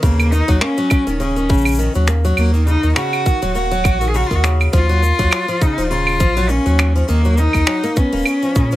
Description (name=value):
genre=folktronica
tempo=102 BPM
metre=4/4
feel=swing 56% on 16ths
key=Eb minor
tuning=A4 = 440 Hz
part: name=rich cello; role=melody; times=0.0-8.8 s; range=Bb3 to Ab4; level=-19 LUFS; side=equal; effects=tape echo
part: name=flamenco guitar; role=arpeggios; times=0.0-8.8 s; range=Db3 to B3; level=-22 LUFS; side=left 1 dB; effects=none
part: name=warm sub bass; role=bass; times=0.0-8.8 s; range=Eb1 to Bb2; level=-16 LUFS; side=equal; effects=none
part: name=electronic kick drum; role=drums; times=0.0-8.7 s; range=none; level=-16 LUFS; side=equal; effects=none
part: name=vintage brush drum kit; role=drums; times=0.0-8.8 s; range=cabasa, claves, finger snaps, hi-hat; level=-23 LUFS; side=right 1 dB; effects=none
room=light reverb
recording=none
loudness=-13 LUFS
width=side -15 dB against mid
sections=0.0-8.8 A section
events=none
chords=0.0 Ebm7; 4.7 Gbmaj7/Eb; 7.1 Bmaj7/D#; 8.3 Bbm